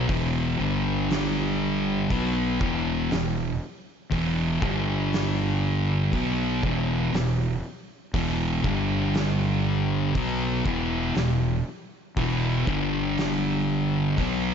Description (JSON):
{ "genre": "stoner and doom metal", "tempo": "60 BPM", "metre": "4/4", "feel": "straight", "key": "E minor", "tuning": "A4 = 438 Hz", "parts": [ { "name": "fuzz guitar", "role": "riff", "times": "0.0-14.5 s", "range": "E2 to B3", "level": "-26 LUFS", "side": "left 7 dB", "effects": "distortion" }, { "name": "thick fuzz guitar", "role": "riff", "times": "0.0-14.5 s", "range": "E2 to B3", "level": "-28 LUFS", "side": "right 12 dB", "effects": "distortion" }, { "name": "fuzz fingered electric bass", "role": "bass", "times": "0.0-14.5 s", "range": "E1 to B1", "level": "-30 LUFS", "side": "equal", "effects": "overdrive" }, { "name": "oversized low-tuned drum kit", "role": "drums", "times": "0.1-14.4 s", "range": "hi-hat, kick drum, snare drum", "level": "-32 LUFS", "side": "equal", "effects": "none" } ], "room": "studio reverb", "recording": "nothing above 7.6 kHz", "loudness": "-23 LUFS", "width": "side -7 dB against mid", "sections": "0.0-14.5 A section", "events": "none", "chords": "0.0 E5; 0.6 G5; 2.1 E5; 4.6 G5; 6.1 E5; 8.6 G5; 10.1 E5; 12.7 G5" }